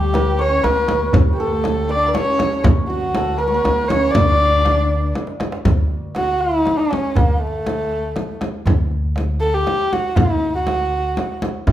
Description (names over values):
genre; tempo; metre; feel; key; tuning
Persian modal ensemble; 80 BPM (dotted quarters); 6/8; straight; D dastgah chahargah; A4 = 441 Hz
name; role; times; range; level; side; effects
dark kamancheh; melody; 0.0-11.5 s; A3 to D5; -19 LUFS; equal; none
dark symphonic cello section; second line; 0.0-5.2 s; F#3 to D4; -26 LUFS; left 1 dB; none
santur; second line; 0.0-6.6 s; F#4 to D5; -25 LUFS; equal; none
upright bass; bass; 0.0-11.7 s; D2; -21 LUFS; equal; none
frame drum; percussion; 0.1-11.7 s; none; -22 LUFS; equal; none
tombak; percussion; 0.1-11.7 s; none; -22 LUFS; right 2 dB; none
room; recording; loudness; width
moderate large studio reverb, RT60 1.0 s; band playing live in one room; -16 LUFS; side -12 dB against mid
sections
0.0-5.7 A section; 5.7-11.7 B section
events
drum fill 5.1-5.7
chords
none